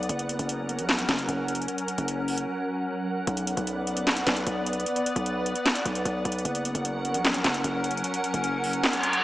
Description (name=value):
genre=hip hop, trap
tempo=151 BPM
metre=4/4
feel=half-time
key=unclear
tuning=A4 = 440 Hz
part: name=glassy FM pad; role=sustained chords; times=0.0-9.2 s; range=F#3 to F#5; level=-28 LUFS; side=equal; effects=ensemble chorus, built-in reverb
part: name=distorted 808-style bass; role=bass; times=0.0-8.8 s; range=F#1 to B1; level=-32 LUFS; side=equal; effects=distortion
part: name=trap drum kit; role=drums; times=0.0-9.2 s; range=handclaps, hi-hat, snare drum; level=-27 LUFS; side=equal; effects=overdrive
part: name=reverse cymbal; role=sound effects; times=9.0-9.2 s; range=none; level=-24 LUFS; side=equal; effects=none
room=moderate lush hall reverb, RT60 2.0 s, digital ambience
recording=small speaker sound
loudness=-25 LUFS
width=side -16 dB against mid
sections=0.0-9.2 A section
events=drums muted 2.5-3.3; kick muted 8.8-9.2; reverse cymbal 9.0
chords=0.1 F#; 3.3 Bm; 6.5 F#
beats=| 0.09 0.49 0.89 1.28 | 1.68 2.08 2.48 2.88 | 3.27 3.67 4.07 4.46 | 4.86 5.26 5.66 6.05 | 6.45 6.85 7.25 7.64 | 8.04 8.44 8.84 9.23